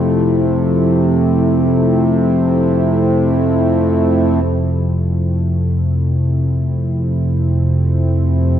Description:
dark ambient drone; free time; F major; A4 = 439 Hz
sweeping resonant pad; sustained chords; 0.0-8.6 s; F3 to E4; -17 LUFS; equal; chorus
analog drone; drone; 0.0-8.6 s; F2 to C3; -14 LUFS; equal; chorus
wet lush hall reverb, RT60 2.7 s; dreamy mix soaked in reverb; -13 LUFS; side -10 dB against mid
0.0-4.4 A section; 4.4-8.6 B section
fade-in on analog synth pad 4.4-8.6; filter sweep on synth drone 4.4-8.6
0.0 F
free time

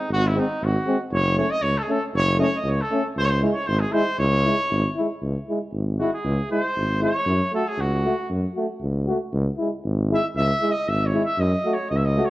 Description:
balkan folk, Balkan brass band; 117 BPM; 2/4; straight; C# harmonic minor; A4 = 439 Hz
clear trumpet; melody; 0.0-12.3 s; D#4 to E5; -24 LUFS; equal
mellow tuba; bass; 0.1-12.2 s; F#1 to F#2; -23 LUFS; equal; transformer saturation
mellow trombone; accompaniment; 0.3-12.3 s; B#3 to F#4; -28 LUFS; left 3 dB
warm euphonium; accompaniment; 0.3-12.3 s; G#3 to A3; -29 LUFS; right 3 dB
moderate recital hall reverb, RT60 1.7 s; worn, warbling old tape, cassette tape, warbly pitch drift; -20 LUFS; side -17 dB against mid
0.0-5.2 A section; 5.2-12.3 B section
trumpet solo 5.2-12.3
0.0 G#; 1.1 F#m; 3.2 C#m; 7.3 F#m; 9.3 C#m; 11.4 F#m
| 0.09 0.60 | 1.12 1.63 | 2.14 2.65 | 3.16 3.68 | 4.19 4.70 | 5.22 5.73 | 6.25 6.76 | 7.28 7.79 | 8.30 8.82 | 9.34 9.85 | 10.37 10.88 | 11.40 11.91

